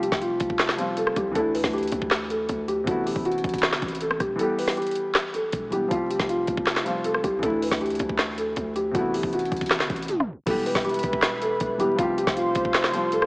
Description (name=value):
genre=hip hop, trap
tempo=158 BPM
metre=4/4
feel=half-time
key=E minor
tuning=A4 = 438 Hz
part: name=felt-muted upright piano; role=melody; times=0.0-13.3 s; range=F4 to B4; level=-26 LUFS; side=equal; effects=none
part: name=warm grand piano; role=accompaniment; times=0.0-13.3 s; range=C3 to G4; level=-30 LUFS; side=left 1 dB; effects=none
part: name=distorted 808-style bass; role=bass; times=0.0-13.3 s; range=E1 to D2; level=-33 LUFS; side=equal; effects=distortion
part: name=trap drum kit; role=drums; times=0.0-13.3 s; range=crash cymbal, handclaps, hi-hat, kick drum, rim click, snare drum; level=-26 LUFS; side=equal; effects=none
part: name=dark analog pad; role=sustained chords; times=10.5-13.3 s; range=G4 to C6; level=-28 LUFS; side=equal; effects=lush chorus
room=light reverb, digital ambience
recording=vinyl crackle, tape stop, small speaker sound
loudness=-22 LUFS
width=side -27 dB against mid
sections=0.0-10.5 A section; 10.5-13.3 B section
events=kick muted 4.4-5.2; tape stop 10.1-10.5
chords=0.0 Fsus2; 1.4 Dsus2; 2.9 Amadd9; 4.4 Em; 5.9 Fsus2; 7.4 Dsus2; 8.9 Amadd9; 10.5 Em; 12.0 Fsus2